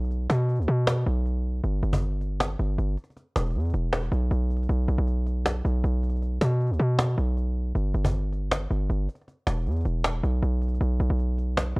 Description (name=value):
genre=hip hop, trap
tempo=157 BPM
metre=4/4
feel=half-time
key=unclear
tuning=A4 = 441 Hz
part: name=hard-hitting 808-style bass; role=bass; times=0.0-11.8 s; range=E1 to B2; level=-24 LUFS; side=equal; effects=none
part: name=cajon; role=drums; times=0.0-11.8 s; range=none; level=-27 LUFS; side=equal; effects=none
room=studio reverb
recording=worn, warbling old tape, cassette tape, warbly pitch drift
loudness=-24 LUFS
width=side -32 dB against mid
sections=0.0-10.8 A section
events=none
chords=none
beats=| 0.11 0.49 0.87 1.25 | 1.64 2.02 2.40 2.78 | 3.17 3.55 3.93 4.31 | 4.69 5.08 5.46 5.84 | 6.22 6.60 6.99 7.37 | 7.75 8.13 8.52 8.90 | 9.28 9.66 10.04 10.43 | 10.81 11.19 11.57